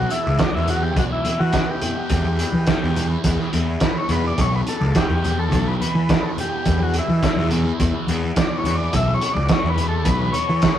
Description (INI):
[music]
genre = psychedelic rock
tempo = 106 BPM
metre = 4/4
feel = straight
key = E dorian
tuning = A4 = 440 Hz
[part]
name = overdriven combo organ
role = melody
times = 0.0-10.8 s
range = D4 to E5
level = -25 LUFS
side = left 1 dB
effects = tape echo
[part]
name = thick fuzz guitar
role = riff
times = 0.0-10.8 s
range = E2 to E3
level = -27 LUFS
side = equal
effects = distortion, phaser
[part]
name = fuzz picked electric bass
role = bass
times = 0.0-10.7 s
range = B1 to E3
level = -22 LUFS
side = equal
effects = overdrive
[part]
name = cloth-damped thuddy drum kit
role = drums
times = 0.1-10.8 s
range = hi-hat, kick drum, snare drum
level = -21 LUFS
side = right 1 dB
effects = none
[part]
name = congas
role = percussion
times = 0.5-10.5 s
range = none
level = -30 LUFS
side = left 3 dB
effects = none
[sound]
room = moderate studio reverb, RT60 0.6 s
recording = rough rehearsal-room recording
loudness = -18 LUFS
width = side -10 dB against mid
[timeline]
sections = 0.0-10.8 A section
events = transistor combo organ solo 0.0-10.8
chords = 0.0 Em